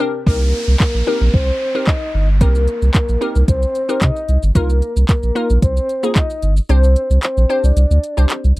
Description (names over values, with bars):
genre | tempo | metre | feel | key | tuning
dance-pop | 112 BPM | 4/4 | straight | C minor | A4 = 442 Hz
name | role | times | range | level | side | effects
glassy wavetable pluck | accompaniment | 0.0-8.5 s | Bb3 to C5 | -22 LUFS | left 2 dB | chorus, sidechain pumping
soft octave-layered synth lead | melody | 0.3-8.6 s | Bb4 to Eb5 | -21 LUFS | equal | chorus, tremolo, slapback echo
saturated sub bass | bass | 0.3-8.6 s | G1 to C3 | -13 LUFS | equal | sidechain pumping
smooth R&B drum kit | drums | 0.3-8.6 s | handclaps, hi-hat, kick drum, shaker | -16 LUFS | equal | none
downlifter | sound effects | 0.3-4.6 s | none | -31 LUFS | equal | none
room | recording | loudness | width
little or no reverb | dry, close 1970s-style studio recording | -13 LUFS | side -20 dB against mid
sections
0.3-8.6 A section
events
break 0.0; kick muted 6.7-8.6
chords
0.3 Cm7; 4.6 Bbsus4; 6.7 Gsus4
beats
| 0.27 0.80 1.34 1.87 | 2.41 2.94 3.48 4.02 | 4.55 5.09 5.62 6.16 | 6.70 7.23 7.77 8.30